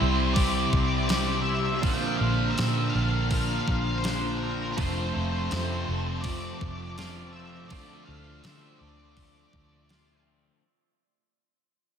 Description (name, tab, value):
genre	rock, shoegaze and dream pop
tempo	82 BPM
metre	4/4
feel	straight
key	D minor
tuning	A4 = 439 Hz
part	octave-fuzz lead guitar	melody	0.0-10.2 s	Bb4 to G5	-33 LUFS	left 1 dB	distortion, analog delay
part	glassy FM pad	sustained chords	0.0-10.6 s	D4 to C6	-37 LUFS	left 2 dB	ensemble chorus, built-in reverb
part	twangy electric guitar	arpeggios	0.0-10.6 s	E3 to G4	-39 LUFS	equal	lush chorus, analog delay
part	distorted electric guitar	riff	0.0-10.6 s	F2 to D4	-35 LUFS	right 2 dB	overdrive
part	overdriven electric guitar	riff	0.0-10.6 s	F2 to E4	-34 LUFS	left 7 dB	lush chorus
part	semi-hollow electric guitar	riff	0.0-10.6 s	Bb2 to F4	-34 LUFS	right 8 dB	reverse reverb
part	vintage muted picked electric bass	bass	0.0-10.5 s	F1 to D3	-30 LUFS	equal	none
part	crisp 8-bit digital drum machine	drums	0.4-10.1 s	hi-hat, kick drum, snare drum	-31 LUFS	equal	none
room	moderate lush hall reverb, RT60 2.7 s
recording	dreamy mix soaked in reverb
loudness	-24 LUFS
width	side -8 dB against mid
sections	0.0-10.6 A section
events	fade-out 0.0-10.6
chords	0.0 C; 1.8 Bbadd9; 4.8 F; 7.7 Dm7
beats	0.37 1.11 | 1.84 2.58 3.31 4.05 | 4.78 5.51 6.25 6.98 | 7.71 8.44 9.17 9.90